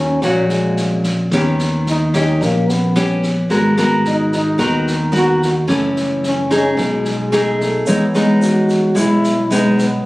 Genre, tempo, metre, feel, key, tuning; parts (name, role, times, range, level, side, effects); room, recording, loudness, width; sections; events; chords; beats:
bossa nova; 110 BPM; 4/4; straight; A4 = 440 Hz
breathy trombone; melody; 0.0-10.1 s; Gb3 to Gb4; -19 LUFS; equal
nylon-string guitar; accompaniment; 0.0-10.0 s; Gb2 to Bb4; -16 LUFS; equal
modern bright fingered electric bass; bass; 0.0-10.0 s; Gb1 to E2; -20 LUFS; equal
open jazz drum kit; drums; 0.2-9.9 s; kick drum, rim click, snare drum; -26 LUFS; equal
bell-like tine electric piano; accompaniment; 7.9-10.1 s; Db5; -28 LUFS; equal
egg shaker; percussion; 7.9-10.1 s; -33 LUFS; right 1 dB
light reverb; recorded on a phone in the room, studio reverb; -13 LUFS; side -19 dB against mid
0.0-10.1 A section
0.0 Ebm7; 1.3 Eb7b13; 3.5 Abm9; 5.7 Gbm7; 6.8 B6; 7.9 Emaj7
0.22 0.77 | 1.31 1.86 2.41 2.95 | 3.50 4.05 4.59 5.14 | 5.69 6.23 6.78 7.33 | 7.87 8.42 8.96 9.51